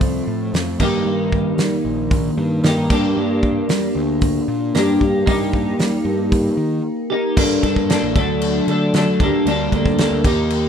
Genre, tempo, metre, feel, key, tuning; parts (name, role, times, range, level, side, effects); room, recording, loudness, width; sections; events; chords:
indie rock; 114 BPM; 4/4; straight; G harmonic minor from 7.4 s; A4 = 440 Hz
twelve-string electric guitar; riff; 0.0-10.7 s; Eb3 to A4; -18 LUFS; equal; double-tracked left and right
fuzz picked electric bass; bass; 0.0-10.7 s; A1 to G3; -23 LUFS; equal; overdrive
loose indie drum kit; drums; 0.0-10.6 s; crash cymbal, hi-hat, kick drum, snare drum; -21 LUFS; equal
studio ambience; rough home demo mix; -16 LUFS; side -8 dB against mid
0.0-7.4 A section; 7.4-10.7 B section
0.0 F; 0.8 Eb/G; 2.9 Gm; 5.3 Eb/G; 7.4 Gmadd9; 8.2 D; 9.2 Gmadd9/D